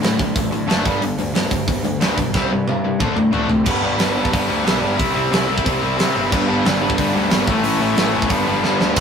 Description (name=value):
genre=punk rock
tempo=181 BPM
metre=4/4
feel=straight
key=D mixolydian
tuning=A4 = 440 Hz
part: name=cranked stack guitar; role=riff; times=0.0-9.0 s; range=G2 to F4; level=-23 LUFS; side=right 3 dB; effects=overdrive
part: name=distorted electric guitar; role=riff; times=0.0-9.0 s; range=G2 to D4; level=-21 LUFS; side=left 5 dB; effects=overdrive
part: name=fuzz picked electric bass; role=bass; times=0.0-9.0 s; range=F#1 to C3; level=-25 LUFS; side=equal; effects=overdrive
part: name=tight metal drum kit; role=drums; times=0.0-9.0 s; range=crash cymbal, hi-hat, kick drum, snare drum, toms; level=-20 LUFS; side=right 1 dB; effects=none
part: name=thick fuzz guitar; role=riff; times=6.3-9.0 s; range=G2 to E4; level=-23 LUFS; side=equal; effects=distortion
room=light reverb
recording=rough rehearsal-room recording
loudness=-16 LUFS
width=side -7 dB against mid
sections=0.0-3.7 A section; 3.7-9.0 B section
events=drum fill 2.3-3.7, 8.6-9.0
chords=0.0 D; 0.9 G5; 2.3 C5; 3.0 D5; 3.7 G; 5.0 C; 6.3 G; 7.5 A; 8.3 G7